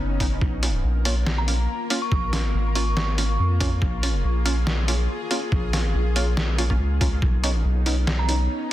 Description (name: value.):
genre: deep dubstep.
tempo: 141 BPM.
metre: 4/4.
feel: swing 55% on 16ths, half-time.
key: Bb phrygian.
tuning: A4 = 443 Hz.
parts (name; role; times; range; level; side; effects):
bowed-like drone; sustained chords; 0.0-8.7 s; Bb3 to Bb4; -32 LUFS; left 3 dB; built-in reverb.
soft dub sub bass; bass; 0.0-8.5 s; F#1 to F2; -22 LUFS; equal; none.
filtered dub chord stab; stabs; 0.2-8.3 s; Bb3 to F4; -31 LUFS; right 2 dB; lush chorus, dub echo.
electronic kick drum; drums; 0.2-7.3 s; none; -23 LUFS; equal; studio reverb.
trip hop sampler-style drum kit; drums; 0.2-8.4 s; hi-hat, snare drum; -28 LUFS; equal; studio reverb.
dark detuned synth bell; melody; 1.4-3.4, 8.2-8.5 s; Bb5 to Db6; -32 LUFS; right 1 dB; chorus, phaser, dub echo.
room: digital ambience.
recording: dense, heavily limited modern master.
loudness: -20 LUFS.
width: side -14 dB against mid.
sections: 0.0-8.7 A section.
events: none.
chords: 0.4 Bbm; 7.2 Badd9.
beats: | 0.41 0.84 1.26 1.69 | 2.12 2.54 2.97 3.39 | 3.82 4.24 4.67 5.09 | 5.52 5.95 6.37 6.80 | 7.22 7.65 8.07 8.50.